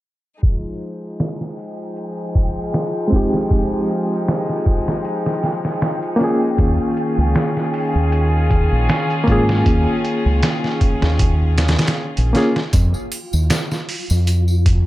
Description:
trip hop; 78 BPM; 4/4; swing 55% on 16ths; F minor; A4 = 442 Hz
rich chamber string section; sustained chords; 0.4-12.7 s; Eb3 to Ab4; -23 LUFS; left 1 dB; vintage 12-bit sampler grit
trip hop sampler-style drum kit; drums; 0.4-14.9 s; hi-hat, kick drum, snare drum; -19 LUFS; equal; small room ambience
flickering grainy texture; texture; 1.7-14.9 s; F4 to G5; -31 LUFS; right 1 dB; built-in reverb
barky reed electric piano; accompaniment; 3.1-12.6 s; Ab3 to Ab4; -21 LUFS; equal; overdrive, tremolo, low-pass filter, tape echo
deep dub fingered electric bass; bass; 6.6-14.8 s; Bb1 to Ab2; -16 LUFS; equal
tambourine and triangle; percussion; 12.7-14.6 s; -32 LUFS; equal
light reverb; low-pass filter; -16 LUFS; side -16 dB against mid
0.4-12.7 A section; 12.7-14.9 B section
filter sweep on reed electric piano 0.4-12.7; filter sweep 0.4-12.7
0.4 Fm7; 6.6 Eb9sus4; 12.7 N.C.

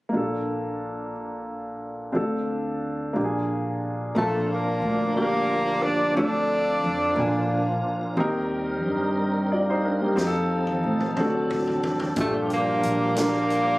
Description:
slow gospel; 60 BPM (dotted quarters); 6/8; straight; Bb major; A4 = 440 Hz
warm grand piano; accompaniment; 0.1-13.8 s; G2 to A5; -26 LUFS; equal
upright bass; bass; 0.1-13.8 s; G1 to A2; -30 LUFS; equal
tonewheel organ; sustained chords; 4.1-13.8 s; Eb3 to Bb4; -31 LUFS; right 2 dB; slow rotary speaker, overdrive, chorus vibrato
clear tenor saxophone; melody; 4.2-7.8, 12.2-13.8 s; A3 to D4; -25 LUFS; right 1 dB
warm horn section; melody; 4.2-7.8, 12.2-13.8 s; D4 to D5; -29 LUFS; left 2 dB
swinging big-band drum kit; drums; 10.2-13.7 s; hi-hat, kick drum, snare drum, toms; -33 LUFS; equal
light reverb; recorded on a phone in the room, club reverb; -22 LUFS; side -20 dB against mid
0.1-4.2 A section; 4.2-13.8 B section
drum fill 10.2-12.2
0.1 Bbmaj7; 2.2 Dm7; 3.2 Bb7; 4.2 Bbmaj7; 6.2 Dm7; 7.2 Bb7; 8.2 Eb6; 10.2 F7; 11.2 D7; 12.2 Gm7

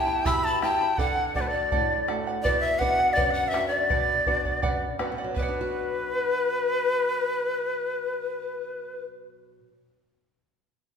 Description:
andean folk, Andean ensemble; 82 BPM; 2/4; straight; B minor pentatonic; A4 = 440 Hz
breathy bright large quena; melody; 0.0-9.0 s; B4 to B5; -26 LUFS; left 1 dB
breathy pan flute; second line; 0.0-9.0 s; B4 to E6; -30 LUFS; left 4 dB
charango; accompaniment; 0.0-9.8 s; E4 to B5; -32 LUFS; right 2 dB
flamenco guitar; accompaniment; 0.0-9.9 s; F#2 to G4; -35 LUFS; right 3 dB
bombo; percussion; 0.3-5.7 s; -31 LUFS; right 1 dB
wet large studio reverb, RT60 1.4 s; band playing live in one room; -23 LUFS; side -6 dB against mid
0.0-5.4 A section; 5.4-8.3 B section
0.0 Em; 1.0 D; 2.4 Bm

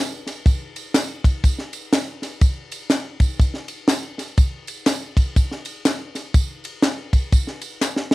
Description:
gospel; 122 BPM; 4/4; swing 61% on 8ths
tight funk drum kit; drums; 0.3-8.1 s; kick drum, ride cymbal, snare drum; -18 LUFS; equal; cassette tape
tambourine and handclaps; percussion; 0.3-8.1 s; -30 LUFS; left 2 dB
light reverb; home recording on cassette; -19 LUFS; side -19 dB against mid
0.0-8.1 A section
drum fill 7.8-8.1

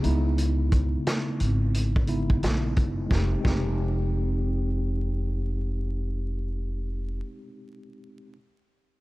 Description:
hip hop, boom-bap hip-hop; 88 BPM; 4/4; swing 62% on 16ths; A4 = 442 Hz
mellow tine electric piano; accompaniment; 0.0-8.4 s; Db3 to G4; -31 LUFS; equal; medium stereo tremolo, high-pass filter, low-pass filter
upright bass; bass; 0.0-7.2 s; F1 to Db2; -26 LUFS; equal
vintage drum kit; drums; 0.0-3.7 s; hi-hat, kick drum, snare drum; -26 LUFS; equal
studio ambience; dark, warm production, vinyl crackle; -24 LUFS; side -19 dB against mid
0.0-3.1 A section; 3.1-5.8 B section
0.0 Dbm9; 3.1 Fm9

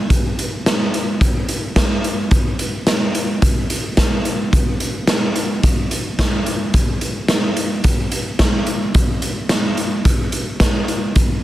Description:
rock; 108 BPM; 4/4; straight
raw garage drum kit; drums; 0.1-11.3 s; hi-hat, kick drum, snare drum; -16 LUFS; equal
light reverb; dense, heavily limited modern master; -16 LUFS; side -14 dB against mid
0.0-11.4 A section

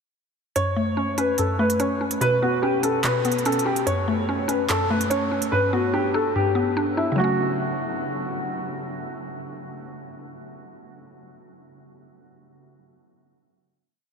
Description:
hip hop, drill; 145 BPM; 4/4; half-time; F# phrygian; A4 = 440 Hz
warm concert grand piano; melody; 0.6-8.4 s; E4 to C#5; -24 LUFS; equal; lush chorus, low-pass filter, diffuse ambient delay
mallet-like synth pluck; accompaniment; 0.6-11.3 s; F#2 to D4; -25 LUFS; equal; chorus, low-pass filter
drill drum kit; drums; 0.6-5.5 s; handclaps, hi-hat; -30 LUFS; right 2 dB
wet huge ambient reverb, RT60 8.4 s; dreamy mix soaked in reverb; -21 LUFS; side -6 dB against mid
0.6-7.2 breakdown; 7.2-10.5 final chord
0.6 F#m; 2.2 Bsus2; 3.9 F#m; 5.5 G; 7.2 F#m

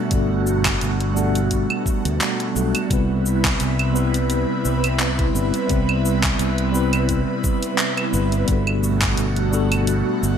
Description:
sunset chillout; 86 BPM; 4/4; swing 55% on 16ths; G major; A4 = 440 Hz
mellow tine electric piano; accompaniment; 0.0-10.4 s; G3 to B4; -23 LUFS; moving between left 2 dB and right 5 dB; medium stereo tremolo, auto-pan, digital delay
airy breathy pad; sustained chords; 0.0-10.4 s; B2 to B4; -26 LUFS; equal; chorus, phaser
fretless electric bass; bass; 0.1-10.4 s; G1 to D2; -22 LUFS; equal; wide subtle chorus
deep house drum kit; drums; 0.1-10.4 s; claves, handclaps, hi-hat, shaker; -25 LUFS; right 1 dB; studio reverb, gated reverb
electronic kick drum; drums; 0.1-9.2 s; -23 LUFS; equal; studio reverb
light reverb; bright 1980s-style digital production; -18 LUFS; side -8 dB against mid
0.0-10.4 A section
0.0 Gmaj9; 2.9 Cmaj7; 8.5 Gmaj9

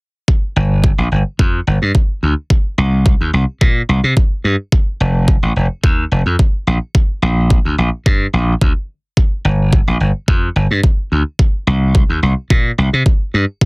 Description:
nu-disco, nu disco; 108 BPM; 4/4; straight; G minor; A4 = 441 Hz
electronic kick drum; drums; 0.3-13.7 s; -12 LUFS; equal; overdrive
slap bass; bass; 0.6-13.4 s; F1 to C3; -13 LUFS; equal; tube saturation, sidechain pumping
little or no reverb; heavily compressed radio sound; -12 LUFS; side -35 dB against mid
0.3-13.7 A section

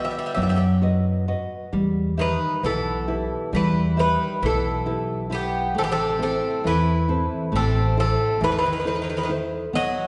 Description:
greek folk, Greek bouzouki band; 135 BPM (eighths); 9/8; straight; E harmonic minor; A4 = 438 Hz
Greek bouzouki; melody; 0.0-10.1 s; G4 to E5; -27 LUFS; equal
Greek bouzouki; second line; 0.0-10.1 s; C3 to B3; -32 LUFS; equal
nylon-string guitar; accompaniment; 0.0-10.1 s; B2 to E5; -28 LUFS; equal
upright bass; bass; 0.0-10.1 s; A1 to F#2; -28 LUFS; equal
wet recital hall reverb, RT60 1.6 s; recorded in a church or concert hall, nothing above 10.5 kHz; -23 LUFS; mono
0.0-1.7 A section; 1.7-10.1 B section
speeding up 0.0-10.1
0.0 B; 1.7 Em; 5.8 Am

